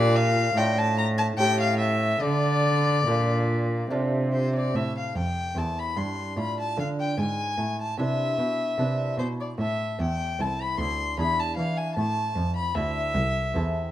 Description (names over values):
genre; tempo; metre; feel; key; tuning
classical, baroque-style sonata movement with continuo; 74 BPM; 3/4; rubato; D minor, A minor from 4.8 s; A4 = 437 Hz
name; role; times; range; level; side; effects
warm violin; melody; 0.0-13.9 s; C5 to C6; -27 LUFS; left 3 dB; none
lute; accompaniment; 0.0-13.9 s; D2 to B4; -32 LUFS; right 2 dB; none
warm cello; bass; 0.0-13.9 s; C2 to E3; -26 LUFS; right 1 dB; none
room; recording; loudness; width
moderate recital hall reverb, RT60 1.4 s; close, detailed microphones; -23 LUFS; side -12 dB against mid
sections
0.0-4.8 A section; 4.8-13.9 A section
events
none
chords
0.0 Gm/Bb; 0.6 Dm/A; 1.4 A7; 2.2 Dm; 4.8 Am; 6.4 Dm/A; 7.2 E7/G#; 9.6 Am; 11.2 E7; 12.0 Am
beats
0.56 1.39 | 2.22 3.07 3.92 | 4.75 5.57 6.37 | 7.18 7.99 8.79 | 9.59 10.39 11.19 | 11.97 12.76 13.56